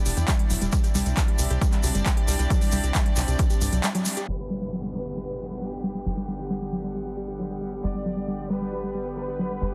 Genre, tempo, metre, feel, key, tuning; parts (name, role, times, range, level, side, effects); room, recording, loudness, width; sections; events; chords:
uplifting trance; 135 BPM; 4/4; straight; G major; A4 = 443 Hz
warm studio string section; sustained chords; 0.0-9.7 s; D3 to F#5; -36 LUFS; equal; sidechain pumping, low-pass filter
analog pluck; arpeggios; 0.1-9.7 s; G2 to G4; -33 LUFS; equal; chorus, sidechain pumping, delay
tight sequencer bass; bass; 0.1-9.7 s; E1 to E2; -32 LUFS; equal; sidechain pumping
big-room dance drum kit; drums; 0.1-4.3 s; handclaps, hi-hat; -33 LUFS; equal
egg shaker; percussion; 0.1-4.3 s; -36 LUFS; equal
electronic kick drum; drums; 0.3-3.5 s; -25 LUFS; equal
bright studio violin section; second line; 4.3-9.7 s; G4 to D5; -39 LUFS; equal; digital delay
downlifter; sound effects; 4.4-7.8 s; -44 LUFS; equal
digital ambience; dense, heavily limited modern master, low-pass filter; -26 LUFS; mono
0.0-4.3 A section; 4.3-9.7 B section
break 3.8-4.3; band accent 3.8; filter sweep on string section 4.3-9.7; filter sweep 4.3-9.7
0.0 Em7; 0.7 Cadd9; 4.3 Gmaj7